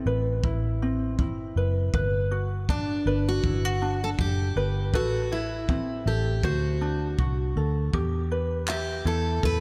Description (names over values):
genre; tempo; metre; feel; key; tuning
acoustic pop; 80 BPM; 4/4; swing 55% on 16ths; G major; A4 = 439 Hz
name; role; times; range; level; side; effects
ukulele; accompaniment; 0.0-9.6 s; C4 to E5; -33 LUFS; equal; slapback echo
vintage muted fingered electric bass; bass; 0.0-9.6 s; F#1 to E2; -29 LUFS; equal; none
compact cocktail drum kit; drums; 0.4-9.6 s; handclaps, kick drum; -32 LUFS; equal; none
picked steel-string acoustic guitar; melody; 2.7-9.6 s; D4 to B4; -32 LUFS; equal; slapback echo, digital delay
room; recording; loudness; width
moderate lush hall reverb, RT60 2.8 s; big arena sound; -26 LUFS; mono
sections
0.0-7.9 A section; 7.9-9.6 B section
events
none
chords
0.0 Amadd9; 1.9 Gmaj7; 4.9 Amadd9; 6.4 D7; 7.9 Em